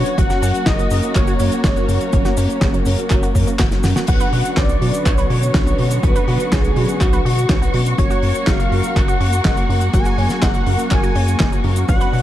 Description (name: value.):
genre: italo disco.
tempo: 123 BPM.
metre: 4/4.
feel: straight.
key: F# major.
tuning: A4 = 439 Hz.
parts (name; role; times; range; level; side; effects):
wide unison lead; melody; 0.0-12.2 s; F#4 to G#5; -24 LUFS; equal; ping-pong delay.
dark symphonic string section; sustained chords; 0.0-12.2 s; D3 to C#6; -24 LUFS; left 1 dB; none.
mellow synth brass; stabs; 0.0-12.2 s; F#3 to B4; -25 LUFS; left 1 dB; chorus.
round analog bass; bass; 0.0-12.2 s; F#1 to B2; -19 LUFS; equal; tube saturation.
damped 70s drum kit; drums; 0.1-12.2 s; cabasa, crash cymbal, handclaps, hi-hat, snare drum; -23 LUFS; left 1 dB; small room ambience.
analog pluck; arpeggios; 0.2-12.2 s; C#3 to B4; -28 LUFS; right 5 dB; chorus, ping-pong delay.
electronic kick drum; drums; 0.2-12.0 s; none; -19 LUFS; equal; small room ambience.
room: studio reverb.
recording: dark, warm production.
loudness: -14 LUFS.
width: side -13 dB against mid.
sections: 0.0-4.1 A section; 4.1-12.2 A section.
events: drum fill 3.7-4.1.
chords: 0.2 F#; 4.1 Bmadd9; 8.0 F#.